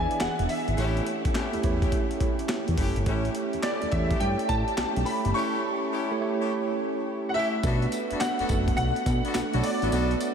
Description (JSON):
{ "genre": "R&B, new jack swing", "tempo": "105 BPM", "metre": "4/4", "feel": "swing 66% on 16ths", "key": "unclear", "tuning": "A4 = 440 Hz", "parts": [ { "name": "clear concert grand piano", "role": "melody", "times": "0.0-10.3 s", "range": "D5 to C#6", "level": "-30 LUFS", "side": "left 1 dB", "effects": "ensemble chorus, ping-pong delay" }, { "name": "tine electric piano", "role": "accompaniment", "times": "0.0-10.3 s", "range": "A3 to E5", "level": "-31 LUFS", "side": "right 5 dB", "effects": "medium tremolo" }, { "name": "brassy analog pad", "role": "sustained chords", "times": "0.0-10.3 s", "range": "E3 to G#4", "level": "-34 LUFS", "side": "equal", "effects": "chorus" }, { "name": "fat analog bass", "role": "bass", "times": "0.0-10.2 s", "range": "E1 to B2", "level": "-28 LUFS", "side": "equal", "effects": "none" }, { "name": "breakbeat sampler-style drum kit", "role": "drums", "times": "0.1-10.3 s", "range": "handclaps, hi-hat, kick drum, snare drum, tambourine", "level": "-30 LUFS", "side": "equal", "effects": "none" }, { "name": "warm horn section", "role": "stabs", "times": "0.8-10.1 s", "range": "A3 to A4", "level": "-35 LUFS", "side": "left 4 dB", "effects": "ping-pong delay" } ], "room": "wet huge ambient reverb, RT60 6.9 s", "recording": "dreamy mix soaked in reverb", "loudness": "-24 LUFS", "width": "side -7 dB against mid", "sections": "0.0-7.6 A section; 7.6-10.3 B section", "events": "none", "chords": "0.0 E7; 0.8 A7; 7.6 Bm7" }